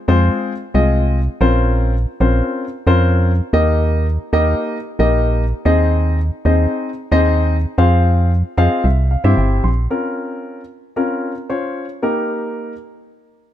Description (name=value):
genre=dance-pop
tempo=113 BPM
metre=4/4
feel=straight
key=unclear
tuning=A4 = 440 Hz
part: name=dark baby grand piano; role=accompaniment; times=0.1-12.7 s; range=Ab3 to C6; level=-18 LUFS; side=left 2 dB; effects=none
part: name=organ-like FM bass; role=bass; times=0.1-9.9 s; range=G1 to G2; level=-14 LUFS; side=right 1 dB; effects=none
room=light reverb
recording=none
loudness=-14 LUFS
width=side -11 dB against mid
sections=0.0-9.9 A section; 9.9-13.5 B section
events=grand piano fill 8.3-9.9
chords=0.0 Fm; 1.4 Bbmadd9; 3.5 Eb; 5.7 Ab/Eb; 7.8 Fm; 8.8 C; 9.9 Bbmadd9; 12.0 Eb